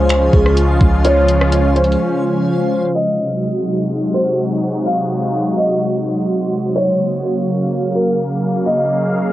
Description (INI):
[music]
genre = hip hop, atmospheric cloud-rap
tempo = 126 BPM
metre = 4/4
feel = half-time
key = unclear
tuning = A4 = 440 Hz
[part]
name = felt-muted upright piano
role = melody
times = 0.0-9.3 s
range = Ab4 to F5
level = -19 LUFS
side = equal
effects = tape echo
[part]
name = sweeping resonant pad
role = sustained chords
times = 0.0-9.3 s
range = C3 to F5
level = -17 LUFS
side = equal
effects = chorus, sidechain pumping
[part]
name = long sustained 808-style bass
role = bass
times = 0.0-2.0 s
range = Db2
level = -15 LUFS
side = equal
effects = none
[part]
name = backwards swelling texture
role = texture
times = 0.0-9.3 s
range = Ab3 to F5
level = -31 LUFS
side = left 1 dB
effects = built-in reverb
[part]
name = smooth R&B drum kit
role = drums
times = 0.1-2.0 s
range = finger snaps, hi-hat, kick drum, rim click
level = -16 LUFS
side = equal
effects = vintage 12-bit sampler grit, cassette tape
[sound]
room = light reverb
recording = home recording on cassette, low-pass filter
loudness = -14 LUFS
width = side -14 dB against mid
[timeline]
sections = 0.0-3.0 A section; 3.0-9.3 B section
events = break 2.0-3.0; filter sweep 3.0-9.3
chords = 0.0 Dbmaj7; 3.0 Ab7; 6.8 Gbmaj7